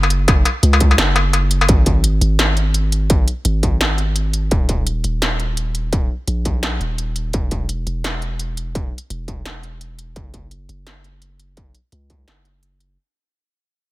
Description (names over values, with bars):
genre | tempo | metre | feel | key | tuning
half-time drum and bass | 170 BPM | 4/4 | swing 59% on 16ths, half-time | unclear | A4 = 441 Hz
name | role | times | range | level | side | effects
long sustained 808-style bass | bass | 0.0-13.0 s | D#1 to C#2 | -18 LUFS | equal | none
industrial drum kit | drums | 0.0-12.9 s | hi-hat, snare drum, struck metal | -20 LUFS | left 1 dB | none
electronic kick drum | drums | 0.3-12.2 s | none | -17 LUFS | equal | distortion
room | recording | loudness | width
little or no reverb | none | -15 LUFS | side -18 dB against mid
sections
0.0-13.0 A section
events
fade-out 1.7-13.0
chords
none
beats
| 0.28 0.63 0.98 1.33 | 1.69 2.04 2.39 2.75 | 3.10 3.45 3.80 4.16 | 4.51 4.86 5.22 5.57 | 5.92 6.28 6.63 6.98 | 7.33 7.69 8.04 8.39 | 8.74 9.10 9.45 9.80 | 10.16 10.51 10.86 11.22 | 11.57 11.92 12.28 12.63